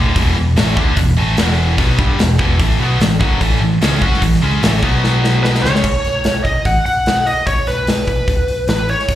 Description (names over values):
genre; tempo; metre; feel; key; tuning
hard rock; 148 BPM; 4/4; straight; unclear; A4 = 440 Hz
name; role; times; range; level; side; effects
high-gain distorted guitar; riff; 0.0-5.8 s; D2 to F#4; -17 LUFS; equal; distortion, slapback echo
picked electric bass; bass; 0.0-9.2 s; B0 to F#2; -17 LUFS; equal; none
big rock drum kit; drums; 0.2-9.2 s; crash cymbal, hi-hat, kick drum, snare drum; -18 LUFS; equal; none
biting lead guitar; melody; 5.4-9.2 s; B4 to F#5; -17 LUFS; equal; overdrive, slapback echo, plate reverb
room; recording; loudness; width
light reverb; live gig heard through the venue's PA, club reverb; -12 LUFS; side -12 dB against mid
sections
0.0-5.8 A section; 5.8-9.2 B section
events
drum fill 5.0-5.8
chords
0.0 E5; 2.6 A5; 4.8 B5; 5.6 C#5; 5.8 B5; 8.3 Bm; 8.7 Aadd9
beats
0.16 0.57 | 0.97 1.38 1.79 2.19 | 2.60 3.00 3.41 3.81 | 4.22 4.62 5.03 5.44 | 5.84 6.25 6.65 7.06 | 7.47 7.87 8.28 8.68 | 9.09